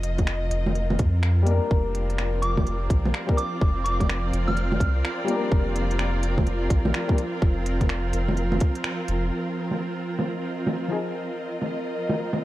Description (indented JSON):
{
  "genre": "future garage",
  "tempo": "126 BPM",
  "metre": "4/4",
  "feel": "swing 63% on 16ths",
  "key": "unclear",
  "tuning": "A4 = 441 Hz",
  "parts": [
    { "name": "clear symphonic string section", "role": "sustained chords", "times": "0.0-12.4 s", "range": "F3 to Eb5", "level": "-29 LUFS", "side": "right 1 dB", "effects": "sidechain pumping" },
    { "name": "soft dub sub bass", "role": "bass", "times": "0.0-9.3 s", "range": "F1 to F2", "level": "-25 LUFS", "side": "equal", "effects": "tube saturation, sidechain pumping" },
    { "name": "organic electronic drum kit", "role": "drums", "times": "0.0-12.4 s", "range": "bongos, finger snaps, hi-hat", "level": "-28 LUFS", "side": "right 1 dB", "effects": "low-pass filter on hats, low-pass filter on perc, low-pass filter on snare, low-pass filter on room" },
    { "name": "electronic kick drum", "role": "drums", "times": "0.2-8.7 s", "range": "none", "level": "-22 LUFS", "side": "equal", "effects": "none" },
    { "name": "felt-muted upright piano", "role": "accompaniment", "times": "1.4-7.2, 10.9-11.0 s", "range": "F3 to Bb4", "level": "-30 LUFS", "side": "left 4 dB", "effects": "sidechain pumping, tape echo" },
    { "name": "soft synth bell", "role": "melody", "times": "2.4-5.0 s", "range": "D6 to F6", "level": "-31 LUFS", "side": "right 1 dB", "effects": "chorus, vintage 12-bit sampler grit, analog delay" },
    { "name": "drifting glass-harmonics texture", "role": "texture", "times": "10.4-12.4 s", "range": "Bb4", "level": "-37 LUFS", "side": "left 1 dB", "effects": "chorus, built-in reverb" }
  ],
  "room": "light reverb, digital ambience",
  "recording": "cassette tape",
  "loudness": "-22 LUFS",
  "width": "side -16 dB against mid",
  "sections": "0.0-9.3 A section; 9.3-12.4 B section",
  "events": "band accent 8.8",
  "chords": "0.0 F7(no3); 1.7 Gm/F; 9.3 F7(no3)"
}